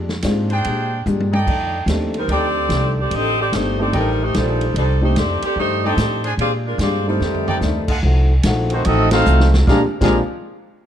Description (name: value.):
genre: jazz, big band swing.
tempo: 146 BPM.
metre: 4/4.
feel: swing 65% on 8ths.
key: unclear.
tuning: A4 = 440 Hz.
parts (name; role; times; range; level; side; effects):
fingerpicked steel-string acoustic guitar; accompaniment; 0.0-10.2 s; F2 to G4; -26 LUFS; left 5 dB; none.
upright bass; bass; 0.0-10.2 s; G1 to Bb2; -19 LUFS; equal; none.
vintage drum kit; drums; 0.1-10.1 s; crash cymbal, hi-hat, kick drum, ride cymbal, snare drum, toms; -24 LUFS; equal; none.
warm grand piano; accompaniment; 0.2-10.2 s; Ab3 to G4; -24 LUFS; right 1 dB; none.
clear trumpet section; stabs; 0.5-8.0 s; D4 to Ab5; -25 LUFS; right 2 dB; none.
warm saxophone section; melody; 2.2-7.9 s; G3 to Eb5; -20 LUFS; equal; none.
bright trombone section; second line; 7.1-10.2 s; Bb2 to F4; -22 LUFS; right 1 dB; none.
warm trumpet section; melody; 8.7-10.2 s; A3 to Bb5; -20 LUFS; equal; none.
room: light reverb.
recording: dark, warm production.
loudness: -15 LUFS.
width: side -10 dB against mid.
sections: 0.0-8.0 A section; 8.0-9.7 B section; 9.7-10.9 C section.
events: drum fill 1.1-1.5, 7.2-7.6, 9.3-9.7; band accent 9.1.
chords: 0.0 Bb13; 1.5 F13; 8.0 F7b9; 9.7 Bb13.